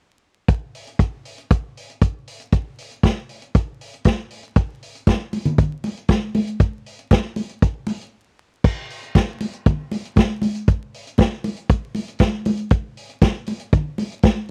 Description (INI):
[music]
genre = disco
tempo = 118 BPM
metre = 4/4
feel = straight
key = none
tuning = none
[part]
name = vintage drum kit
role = drums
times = 0.5-14.4 s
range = crash cymbal, hi-hat, kick drum, snare drum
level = -19 LUFS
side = equal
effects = none
[part]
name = congas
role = percussion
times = 5.1-14.4 s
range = none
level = -26 LUFS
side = equal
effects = none
[sound]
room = little or no reverb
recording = dry, close 1970s-style studio recording, vinyl crackle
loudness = -21 LUFS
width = mono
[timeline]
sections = 0.5-8.6 A section; 8.6-14.5 B section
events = break 8.1-8.6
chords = none